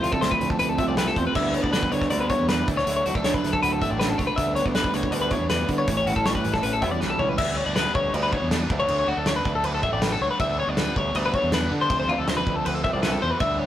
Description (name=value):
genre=math rock and midwest emo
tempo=159 BPM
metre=4/4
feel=straight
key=unclear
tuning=A4 = 440 Hz
part: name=mellow electric guitar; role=accompaniment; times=0.0-7.4 s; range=D2 to F#4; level=-28 LUFS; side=right 3 dB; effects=none
part: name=twelve-string electric guitar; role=arpeggios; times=0.0-13.7 s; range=F4 to E5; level=-25 LUFS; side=left 2 dB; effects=warbly pitch drift
part: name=crunchy overdriven guitar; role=riff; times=0.0-13.7 s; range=F2 to E4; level=-31 LUFS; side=right 1 dB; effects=none
part: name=growling fingered electric bass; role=bass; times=0.0-13.6 s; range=A1 to D3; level=-28 LUFS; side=right 1 dB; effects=overdrive
part: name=loose indie drum kit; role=drums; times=0.0-13.5 s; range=crash cymbal, hi-hat, kick drum, snare drum, toms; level=-27 LUFS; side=equal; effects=none
room=moderate studio reverb, RT60 0.5 s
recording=rough rehearsal-room recording, warm saturation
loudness=-21 LUFS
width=side -12 dB against mid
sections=0.0-7.4 A section; 7.4-13.7 B section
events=drum fill 7.0-7.4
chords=0.0 Fmaj7/D; 1.4 G6/D; 2.7 Dmaj7; 4.4 G6/D; 5.9 A7; 7.4 G6/D; 8.7 Dmaj7; 10.4 G6/D; 11.9 F/D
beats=0.21 0.59 0.97 | 1.35 1.73 2.11 2.48 | 2.86 3.24 3.62 3.99 | 4.37 4.75 5.13 5.50 | 5.88 6.26 6.63 7.01 | 7.38 7.76 8.14 8.51 | 8.89 9.26 9.64 10.02 | 10.39 10.77 11.14 11.52 | 11.90 12.27 12.65 13.03 | 13.40